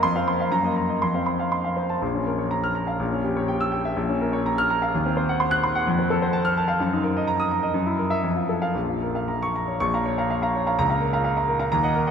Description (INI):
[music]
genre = classical, virtuoso piano study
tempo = 111-130 BPM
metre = 2/4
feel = rubato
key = Bb minor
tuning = A4 = 440 Hz
[part]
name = clear concert grand piano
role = solo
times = 0.0-12.1 s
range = Bb1 to Gb6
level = -21 LUFS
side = equal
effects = none
[sound]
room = wet cathedral reverb, RT60 5.7 s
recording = in a vast, echoing space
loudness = -21 LUFS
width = side -7 dB against mid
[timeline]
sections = 0.0-2.0 A section; 2.0-9.8 A section; 9.8-12.1 B section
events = none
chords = 0.0 F5; 0.5 Ebm/Gb; 1.0 F; 2.0 Bbm; 3.0 Bbdim7; 4.0 Bbm; 4.9 Cdim/Eb; 5.9 F; 6.8 Ebm/Gb; 7.7 Gb7; 8.2 F; 8.8 Bbm; 10.8 Bbm/Db